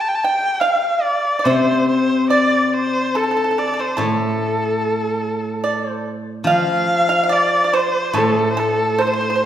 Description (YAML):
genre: chinese traditional, Chinese chamber ensemble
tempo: 72 BPM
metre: 4/4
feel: rubato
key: unclear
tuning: A4 = 440 Hz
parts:
  - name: warm erhu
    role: melody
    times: 0.0-9.5 s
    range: A4 to A5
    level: -18 LUFS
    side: left 1 dB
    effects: none
  - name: pipa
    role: second line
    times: 0.2-9.4 s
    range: A4 to G5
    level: -21 LUFS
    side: right 3 dB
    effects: none
  - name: steel-string zither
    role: accompaniment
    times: 1.5-9.5 s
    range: A2 to F3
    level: -20 LUFS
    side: left 1 dB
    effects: none
room: wet recital hall reverb, RT60 1.7 s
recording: heard from further back in the room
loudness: -15 LUFS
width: side -10 dB against mid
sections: 0.0-9.5 A section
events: none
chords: none